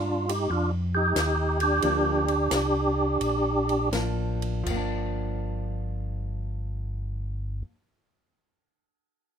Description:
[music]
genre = soul jazz organ trio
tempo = 80-93 BPM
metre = 4/4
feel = swing 67% on 8ths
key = G minor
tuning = A4 = 443 Hz
[part]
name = percussive tonewheel organ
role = melody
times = 0.0-3.9 s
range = D4 to G4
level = -24 LUFS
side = right 1 dB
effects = slow rotary speaker, overdrive, chorus vibrato
[part]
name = mellow tonewheel organ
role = bass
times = 0.0-7.6 s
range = G1 to G2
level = -29 LUFS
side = equal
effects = slow rotary speaker
[part]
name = compact cocktail drum kit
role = drums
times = 0.3-4.9 s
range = crash cymbal, hi-hat, kick drum, ride cymbal, snare drum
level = -35 LUFS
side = left 1 dB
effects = none
[part]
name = vintage hollow-body jazz guitar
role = accompaniment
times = 1.8-7.8 s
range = F3 to D4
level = -33 LUFS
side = equal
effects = none
[sound]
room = light reverb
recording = minimal, uncompressed stereo recording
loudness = -24 LUFS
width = side -7 dB against mid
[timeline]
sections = 0.0-4.7 A section; 4.7-7.7 B section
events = slowing down 0.0-4.7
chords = 0.0 Ebmaj7; 1.8 Gm7

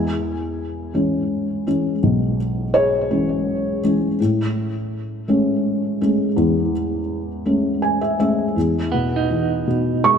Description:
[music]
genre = folk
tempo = 55 BPM (dotted quarters)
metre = 6/8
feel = straight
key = E major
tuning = A4 = 439 Hz
[part]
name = felt-muted upright piano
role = melody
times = 0.0-10.2 s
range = B1 to C#6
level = -18 LUFS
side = left 1 dB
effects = wide subtle chorus, ping-pong delay
[part]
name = electric guitar through a small old amp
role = arpeggios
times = 8.9-10.2 s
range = B3 to D#4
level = -22 LUFS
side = right 7 dB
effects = tremolo
[sound]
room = wet plate reverb, RT60 2.4 s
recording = dreamy mix soaked in reverb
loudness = -18 LUFS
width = side -7 dB against mid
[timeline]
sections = 0.0-8.6 A section; 8.6-10.2 B section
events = felt piano fill 7.5-8.6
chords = 0.0 E6; 4.2 Amaj7; 8.6 E5

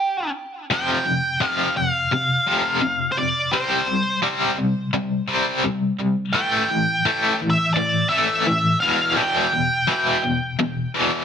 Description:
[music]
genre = rock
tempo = 85 BPM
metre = 4/4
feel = straight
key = unclear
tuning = A4 = 439 Hz
[part]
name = octave-fuzz lead guitar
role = melody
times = 0.0-11.2 s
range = G4 to G5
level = -21 LUFS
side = equal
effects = distortion, digital delay
[part]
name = biting overdriven guitar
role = riff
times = 0.7-11.2 s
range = E2 to C4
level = -20 LUFS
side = left 1 dB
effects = tremolo
[sound]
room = moderate large studio reverb, RT60 0.8 s, digital ambience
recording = dense, heavily limited modern master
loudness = -18 LUFS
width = side -7 dB against mid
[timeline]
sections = 0.7-11.2 A section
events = none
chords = 0.0 N.C.; 0.7 Fsus2; 3.5 C5; 6.4 A5; 8.8 Em

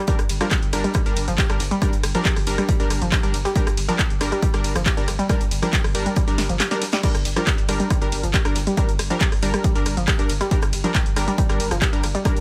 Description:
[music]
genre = driving peak-time techno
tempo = 138 BPM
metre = 4/4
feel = straight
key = G minor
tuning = A4 = 440 Hz
[part]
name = warbly dusty pluck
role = riff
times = 0.1-12.3 s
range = F3 to G4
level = -29 LUFS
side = equal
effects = chorus, sidechain pumping, tape echo
[part]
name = supersaw stab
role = stabs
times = 0.1-12.4 s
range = G3 to Bb4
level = -29 LUFS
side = equal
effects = sidechain pumping, tape echo
[part]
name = damped 70s drum kit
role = drums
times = 0.1-12.4 s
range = hi-hat, snare drum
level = -40 LUFS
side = equal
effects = none
[part]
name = electronic kick drum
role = drums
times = 0.1-12.3 s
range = none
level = -24 LUFS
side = equal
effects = none
[part]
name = punchy analog drum machine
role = drums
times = 0.1-12.4 s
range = crash cymbal, handclaps, hi-hat, ride cymbal, rim click, snare drum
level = -28 LUFS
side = equal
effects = sidechain pumping on hats, sidechain pumping on cymbals
[part]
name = saturated sub bass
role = bass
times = 0.2-12.4 s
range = G1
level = -29 LUFS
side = equal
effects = sidechain pumping, low-pass filter
[sound]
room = light reverb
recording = none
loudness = -21 LUFS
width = mono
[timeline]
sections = 0.0-12.4 A section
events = drum fill 6.4-7.0; kick drops out 6.6-7.0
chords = 0.0 Gm

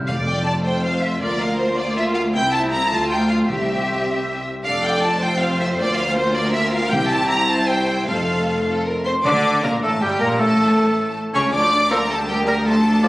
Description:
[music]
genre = quick classical-period movement for symphony orchestra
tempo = 105 BPM (dotted quarters)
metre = 6/8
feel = straight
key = F major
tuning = A4 = 440 Hz
[part]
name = mellow silver concert flute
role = second line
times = 0.0-0.1, 9.1-13.1 s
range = G5 to D6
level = -24 LUFS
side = equal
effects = none
[part]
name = timpani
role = percussion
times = 0.0-0.6, 3.5-4.0, 6.9-7.5 s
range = F2 to C3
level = -29 LUFS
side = equal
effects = none
[part]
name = rich studio violin section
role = melody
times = 0.1-13.1 s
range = C5 to D6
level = -22 LUFS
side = equal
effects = none
[part]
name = rich studio violin section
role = second line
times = 0.1-13.1 s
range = E4 to D5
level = -26 LUFS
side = equal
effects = none
[part]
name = rich studio viola section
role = accompaniment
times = 0.1-13.1 s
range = F3 to Bb4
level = -27 LUFS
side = equal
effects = none
[part]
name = mellow French horn section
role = sustained chords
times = 0.1-13.1 s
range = G3 to A4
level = -26 LUFS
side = left 1 dB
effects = none
[part]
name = rich studio cello section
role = bass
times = 0.1-13.1 s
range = C2 to D3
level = -24 LUFS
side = equal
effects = none
[part]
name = rich studio double bass section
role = bass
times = 0.1-13.1 s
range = F1 to D2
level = -28 LUFS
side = equal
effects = none
[part]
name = warm oboe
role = second line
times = 9.3-13.1 s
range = G4 to D5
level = -24 LUFS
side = equal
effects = none
[part]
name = clear bassoon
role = accompaniment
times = 9.3-13.1 s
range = F3 to D4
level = -26 LUFS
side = equal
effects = none
[sound]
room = wet concert hall reverb, RT60 1.7 s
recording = recorded on a phone in the room, club ambience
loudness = -17 LUFS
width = side -19 dB against mid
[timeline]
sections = 0.1-9.3 A section; 9.3-13.1 B section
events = none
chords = 0.1 F; 1.2 Bb/D; 2.4 C; 2.9 Dm; 3.5 C; 4.7 F; 5.8 Bb/D; 6.9 C; 8.1 F; 9.3 Bb; 9.8 Gmadd9; 10.4 A; 11.5 Dm; 12.1 Gm/D

